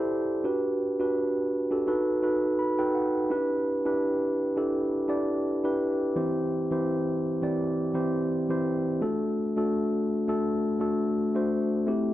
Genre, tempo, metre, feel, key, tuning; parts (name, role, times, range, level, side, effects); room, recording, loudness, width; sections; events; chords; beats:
pop; 84 BPM; 4/4; swing 55% on 16ths; E minor; A4 = 435 Hz
mellow tine electric piano; solo; 0.0-12.1 s; E3 to B5; -25 LUFS; equal; tape echo
wet recital hall reverb, RT60 1.4 s; -25 LUFS; side -14 dB against mid
0.0-3.3 A section; 3.3-12.1 B section
tine electric piano fill 2.2-3.3
0.4 Gmaj7; 1.9 B7; 3.3 Em7; 6.2 C/E; 9.0 D
| 0.45 1.16 1.87 2.59 | 3.30 4.02 4.73 5.45 | 6.16 6.87 7.59 8.30 | 9.02 9.73 10.45 11.16 | 11.87